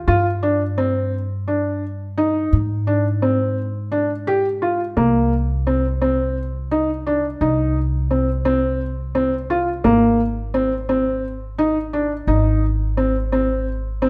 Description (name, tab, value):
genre	contemporary instrumental, chamber music in an uneven meter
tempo	172 BPM (eighths)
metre	7/8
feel	straight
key	Ab lydian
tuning	A4 = 440 Hz
part	upright bass	bass	0.0-14.1 s	Ab1 to Ab2	-25 LUFS	equal	none
part	felt-muted upright piano	arpeggios	0.1-14.1 s	Bb3 to G4	-21 LUFS	equal	none
room	moderate recital hall reverb, RT60 1.4 s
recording	none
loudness	-20 LUFS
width	mono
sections	0.0-5.0 A section; 5.0-14.1 B section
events	none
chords	0.1 G5; 2.5 Ab; 5.0 N.C.; 9.8 Ab